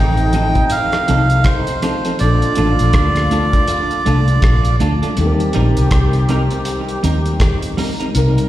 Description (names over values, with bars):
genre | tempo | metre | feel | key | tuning
lovers rock reggae | 81 BPM | 4/4 | swing 60% on 16ths | unclear | A4 = 440 Hz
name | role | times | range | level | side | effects
melodica | melody | 0.0-4.8 s | C5 to G5 | -20 LUFS | right 2 dB | tape echo, slapback echo
mellow horn section | second line | 0.0-8.5 s | C3 to Bb4 | -25 LUFS | left 2 dB | slapback echo
mellow tine electric piano | accompaniment | 0.0-8.5 s | F3 to Bb4 | -24 LUFS | left 2 dB | medium stereo tremolo
vintage muted fingered electric bass | bass | 0.0-8.4 s | A1 to Eb2 | -15 LUFS | equal | none
cloth-damped thuddy drum kit | drums | 0.2-8.5 s | hi-hat, kick drum, rim click | -19 LUFS | equal | none
semi-hollow electric guitar | stabs | 0.3-8.1 s | F3 to Bb4 | -23 LUFS | right 1 dB | tape echo, slapback echo
room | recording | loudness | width
light reverb, studio ambience | live gig heard through the venue's PA, recital hall reverb | -13 LUFS | side -14 dB against mid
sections
0.0-8.5 A section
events
none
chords
0.0 F7; 2.2 Bbmaj7; 5.2 Eb6